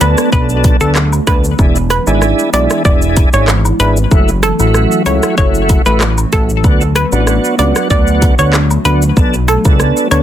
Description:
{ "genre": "dancehall", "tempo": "95 BPM", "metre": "4/4", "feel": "straight", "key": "F# minor", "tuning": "A4 = 438 Hz", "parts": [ { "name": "hollow square pluck", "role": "melody", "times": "0.0-10.2 s", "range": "A4 to D5", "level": "-17 LUFS", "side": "equal", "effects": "chorus, ping-pong delay" }, { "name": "tonewheel organ", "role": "accompaniment", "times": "0.0-10.2 s", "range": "A3 to A4", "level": "-16 LUFS", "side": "right 2 dB", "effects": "chorus vibrato, slow rotary speaker, sidechain pumping" }, { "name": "hollow soft pad", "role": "sustained chords", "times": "0.0-10.2 s", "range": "E3 to F#4", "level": "-20 LUFS", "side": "equal", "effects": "ensemble chorus, sidechain pumping" }, { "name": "fat analog bass", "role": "bass", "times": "0.0-10.2 s", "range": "E1 to D2", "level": "-14 LUFS", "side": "equal", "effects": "none" }, { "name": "pop drum kit", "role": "drums", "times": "0.0-10.2 s", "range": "handclaps, hi-hat, kick drum, rim click, shaker", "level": "-13 LUFS", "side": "equal", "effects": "soft clipping on snare" }, { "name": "cabasa and woodblock", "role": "percussion", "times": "0.0-10.2 s", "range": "none", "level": "-25 LUFS", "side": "left 3 dB", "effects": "none" } ], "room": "light reverb", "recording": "dense, heavily limited modern master", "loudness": "-9 LUFS", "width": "side -11 dB against mid", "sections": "0.0-10.2 A section", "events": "none", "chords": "0.0 Bm7; 1.6 E7; 4.1 F#m7; 6.6 D6; 9.2 Bm7" }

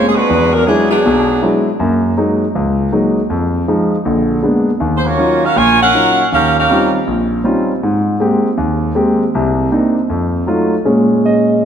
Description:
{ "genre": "jazz", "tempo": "159 BPM", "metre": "4/4", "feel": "swing 66% on 8ths", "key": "Bb minor", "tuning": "A4 = 439 Hz", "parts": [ { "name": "warm saxophone section", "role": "melody", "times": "0.0-1.6, 5.0-6.9 s", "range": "F#3 to Ab5", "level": "-13 LUFS", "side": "right 1 dB", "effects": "none" }, { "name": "clear concert grand piano", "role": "accompaniment", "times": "0.0-11.7 s", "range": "Bb1 to Eb5", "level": "-13 LUFS", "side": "equal", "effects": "none" } ], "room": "wet concert hall reverb, RT60 2.0 s", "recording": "none", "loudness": "-11 LUFS", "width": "side -8 dB against mid", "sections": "0.0-10.8 A section", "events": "none", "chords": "0.3 E9; 1.8 Gb69; 3.3 Fm7; 4.0 Bb7b9; 4.8 Ebm9; 6.3 Eb13; 7.8 Abmaj9; 9.3 Cm9; 10.1 F7b9; 10.8 Bbm7" }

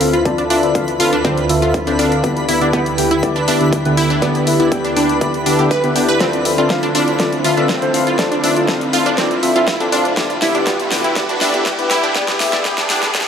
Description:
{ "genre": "progressive house", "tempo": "121 BPM", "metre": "4/4", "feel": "straight", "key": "D dorian", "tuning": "A4 = 441 Hz", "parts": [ { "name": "supersaw pad", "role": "sustained chords", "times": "0.0-13.3 s", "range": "D2 to B4", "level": "-22 LUFS", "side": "equal", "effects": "phaser, sidechain pumping, low-pass filter" }, { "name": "deep mellow chord stab", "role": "stabs", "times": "0.0-13.3 s", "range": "D3 to G5", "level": "-18 LUFS", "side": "left 1 dB", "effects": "chorus, sidechain pumping, dub echo" }, { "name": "pop drum kit", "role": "drums", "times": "0.0-13.3 s", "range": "hi-hat, snare drum", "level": "-22 LUFS", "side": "left 1 dB", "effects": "small room reverb" }, { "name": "riser", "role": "sound effects", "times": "1.2-13.3 s", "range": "none", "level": "-27 LUFS", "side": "right 2 dB", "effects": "none" }, { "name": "twinkling granular texture", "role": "texture", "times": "0.0-13.3 s", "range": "B4 to B5", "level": "-26 LUFS", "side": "equal", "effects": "built-in reverb, sidechain pumping" }, { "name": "wide unison pluck", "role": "arpeggios", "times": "0.1-12.9 s", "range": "B3 to B4", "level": "-19 LUFS", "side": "equal", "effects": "phaser, sidechain pumping, dub echo" }, { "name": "electronic kick drum", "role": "drums", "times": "0.3-13.2 s", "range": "none", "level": "-23 LUFS", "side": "equal", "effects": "high-pass filter on kick, small room reverb, high-pass filter on room" } ], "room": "wet concert hall reverb, RT60 2.2 s", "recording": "dark, warm production, high-pass filter", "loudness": "-13 LUFS", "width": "side -7 dB against mid", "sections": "0.0-13.3 A section", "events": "build-up 0.0-13.3; filter sweep on supersaw synth 0.0-13.3; filter sweep 0.0-13.3; drum fill 6.2-13.3", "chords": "0.0 Dm7; 2.2 Em7/D; 6.2 Dm7; 10.2 Em7/D" }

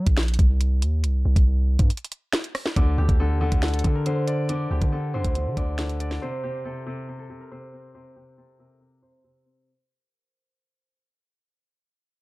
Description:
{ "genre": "hip hop, drill", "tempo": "139 BPM", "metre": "4/4", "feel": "half-time", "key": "unclear", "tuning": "A4 = 440 Hz", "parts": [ { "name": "long sustained 808-style bass", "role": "bass", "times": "0.0-6.2 s", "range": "Bb1 to D3", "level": "-22 LUFS", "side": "equal", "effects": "none" }, { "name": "drill drum kit", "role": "drums", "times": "0.1-6.2 s", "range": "finger snaps, hi-hat, kick drum, rim click, snare drum", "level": "-22 LUFS", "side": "equal", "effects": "none" }, { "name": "concert harp", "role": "melody", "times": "2.8-11.0 s", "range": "G4 to D5", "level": "-33 LUFS", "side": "right 1 dB", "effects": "low-pass filter" }, { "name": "bright concert grand piano", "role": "accompaniment", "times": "2.8-9.7 s", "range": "C3 to D5", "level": "-31 LUFS", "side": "left 3 dB", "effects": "low-pass filter" } ], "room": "little or no reverb", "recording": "dark, warm production", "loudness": "-21 LUFS", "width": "side -21 dB against mid", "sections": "0.0-2.8 A section; 2.8-9.7 B section", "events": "break 0.0-2.8; fade-out 2.8-9.7; filter sweep 2.8-9.7", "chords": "0.0 N.C.; 2.8 D5; 6.2 N.C." }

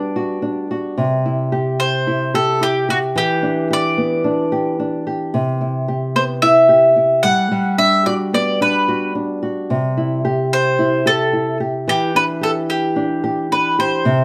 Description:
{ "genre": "indie pop", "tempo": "110 BPM", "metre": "4/4", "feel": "swing 60% on 16ths", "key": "C lydian", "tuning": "A4 = 439 Hz", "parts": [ { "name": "mandolin", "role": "melody", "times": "0.0-14.2 s", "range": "F#4 to F#5", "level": "-18 LUFS", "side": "equal", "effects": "none" }, { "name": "nylon-string guitar", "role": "accompaniment", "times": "0.0-14.2 s", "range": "C3 to G4", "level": "-21 LUFS", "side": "equal", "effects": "warbly pitch drift" } ], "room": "moderate studio reverb, RT60 0.7 s", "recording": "band playing live in one room", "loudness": "-17 LUFS", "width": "mono", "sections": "0.0-14.1 A section", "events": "none", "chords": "0.0 Gmaj7; 1.0 C; 3.2 Em7; 5.3 Cmaj7; 7.2 Gmaj7; 9.7 C; 11.9 Em7" }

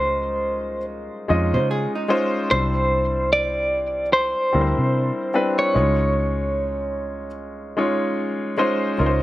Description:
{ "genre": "R&B", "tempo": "74 BPM", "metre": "4/4", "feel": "swing 58% on 16ths", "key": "unclear", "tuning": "A4 = 440 Hz", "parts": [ { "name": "clean electric guitar", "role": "melody", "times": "0.0-8.1 s", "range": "C5 to D5", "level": "-22 LUFS", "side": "equal", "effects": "tremolo, plate reverb" }, { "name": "clear grand piano", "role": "accompaniment", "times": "0.0-9.2 s", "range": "G3 to Eb5", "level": "-23 LUFS", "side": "left 1 dB", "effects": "plate reverb" }, { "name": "vintage muted fingered electric bass", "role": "bass", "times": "0.0-9.2 s", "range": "C2 to Db3", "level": "-24 LUFS", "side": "equal", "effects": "none" }, { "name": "vintage hollow-body jazz guitar", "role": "second line", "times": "1.5-2.5 s", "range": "Eb4 to C5", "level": "-26 LUFS", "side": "right 2 dB", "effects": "plate reverb" } ], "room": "moderate studio reverb, RT60 0.6 s", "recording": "none", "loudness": "-19 LUFS", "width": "side -16 dB against mid", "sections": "0.0-9.0 A section", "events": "none", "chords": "0.0 Dbmaj9; 2.5 Cadd9; 5.7 Dbmaj9" }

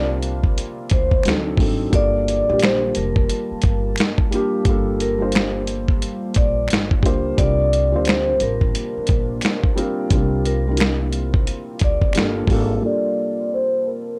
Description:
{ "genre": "lo-fi hip hop", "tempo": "88 BPM", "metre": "4/4", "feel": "swing 64% on 16ths", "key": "G minor", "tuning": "A4 = 440 Hz", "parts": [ { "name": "vibraphone with soft mallets", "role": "melody", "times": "0.0-14.2 s", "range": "Bb4 to D5", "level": "-25 LUFS", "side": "equal", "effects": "low-pass filter" }, { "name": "felt-muted upright piano", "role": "accompaniment", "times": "0.0-14.2 s", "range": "F#3 to C5", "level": "-27 LUFS", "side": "equal", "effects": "low-pass filter" }, { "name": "deep dark ambient pad", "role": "sustained chords", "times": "0.1-12.8 s", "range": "C3 to A5", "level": "-35 LUFS", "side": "equal", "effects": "chorus, built-in reverb" }, { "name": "upright bass", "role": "bass", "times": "0.0-12.8 s", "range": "F1 to D2", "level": "-26 LUFS", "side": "equal", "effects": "none" }, { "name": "dusty soul sampler-style drum kit", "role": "drums", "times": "0.2-12.7 s", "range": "finger snaps, hi-hat, kick drum, snare drum", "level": "-21 LUFS", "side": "equal", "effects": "none" }, { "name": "finger snaps", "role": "percussion", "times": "1.2-12.3 s", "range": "none", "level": "-32 LUFS", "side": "equal", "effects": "none" } ], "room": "light reverb", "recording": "dry, gritty hardware recording, cassette tape", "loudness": "-19 LUFS", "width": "mono", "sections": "0.0-12.8 A section; 12.8-14.2 B section", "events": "filter sweep 12.8-14.2", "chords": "0.0 C9sus4; 1.2 D7b9; 1.9 Gm9; 7.4 C9sus4; 12.2 Gm9" }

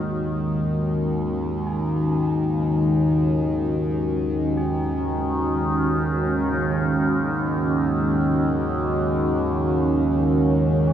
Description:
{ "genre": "dark ambient drone", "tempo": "free time", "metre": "none", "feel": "none", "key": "unclear", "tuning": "A4 = 438 Hz", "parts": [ { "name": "deep dark ambient pad", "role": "sustained chords", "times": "0.0-10.9 s", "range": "Eb3 to Gb4", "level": "-23 LUFS", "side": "equal", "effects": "chorus, built-in reverb" }, { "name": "overtone-sweeping drone", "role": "drone", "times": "0.0-10.9 s", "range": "Eb2 to Eb3", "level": "-22 LUFS", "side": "equal", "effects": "chorus, built-in reverb" }, { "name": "tubular bells", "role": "arpeggios", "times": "1.7-10.9 s", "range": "Db4 to Ab4", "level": "-41 LUFS", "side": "right 1 dB", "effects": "diffuse ambient delay" } ], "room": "wet huge ambient reverb, RT60 7.7 s", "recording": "none", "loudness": "-20 LUFS", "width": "side -10 dB against mid", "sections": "0.0-10.9 A section", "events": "fade-in on tubular bells 0.0-10.9", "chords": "0.0 Ab7sus4/Eb" }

